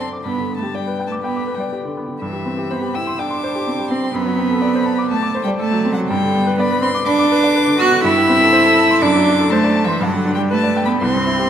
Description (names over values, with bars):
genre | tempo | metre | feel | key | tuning
quick classical-period movement for piano trio | 123 BPM | 4/4 | straight | G major | A4 = 440 Hz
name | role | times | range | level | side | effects
warm violin | melody | 0.0-11.5 s | E5 to F#6 | -23 LUFS | left 7 dB | none
clear cello | second line | 0.0-11.5 s | E3 to F#4 | -17 LUFS | right 2 dB | none
bright baby grand piano | accompaniment | 0.0-11.5 s | C2 to D6 | -20 LUFS | left 1 dB | none
room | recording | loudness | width
wet scoring stage reverb, RT60 2.0 s | none | -14 LUFS | side -9 dB against mid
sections
0.0-11.5 A section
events
none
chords
0.3 G; 2.2 C/G; 4.2 D7/F#; 6.1 G; 8.1 Am7/G; 9.0 D7/F#; 10.0 G